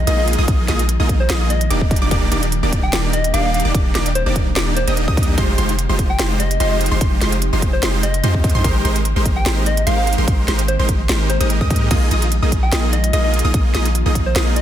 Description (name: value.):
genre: future bass.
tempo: 147 BPM.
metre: 4/4.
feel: swing 54% on 16ths, half-time.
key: Eb major.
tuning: A4 = 444 Hz.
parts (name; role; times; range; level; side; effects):
soft struck synth lead; melody; 0.0-14.6 s; C5 to G5; -24 LUFS; left 1 dB; chorus, sidechain pumping, dub echo.
ethereal airy pad; sustained chords; 0.0-14.6 s; Eb3 to G4; -28 LUFS; equal; ensemble chorus, built-in reverb, sidechain pumping.
long sustained 808-style bass; bass; 0.0-14.6 s; Eb1 to Ab2; -19 LUFS; equal; sidechain pumping.
impact; sound effects; 0.0-0.5 s; none; barely audible; none; none.
wide unison pluck; arpeggios; 0.1-14.6 s; C6 to Eb6; -28 LUFS; right 1 dB; sidechain pumping.
supersaw chords; riff; 0.1-14.6 s; Ab3 to Eb5; -22 LUFS; right 1 dB; sidechain pumping.
trap drum kit; drums; 0.1-14.6 s; crash cymbal, hi-hat, snare drum; -23 LUFS; right 1 dB; none.
electronic kick drum; drums; 0.5-14.2 s; none; -18 LUFS; equal; none.
room: little or no reverb.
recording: dense, heavily limited modern master.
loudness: -14 LUFS.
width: side -11 dB against mid.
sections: 0.0-14.6 A section.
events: impact 0.0-0.5.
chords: 0.0 Bb7sus4; 1.9 Ebmaj7; 5.4 Fm9; 8.6 Abmaj9; 11.9 Bb7sus4.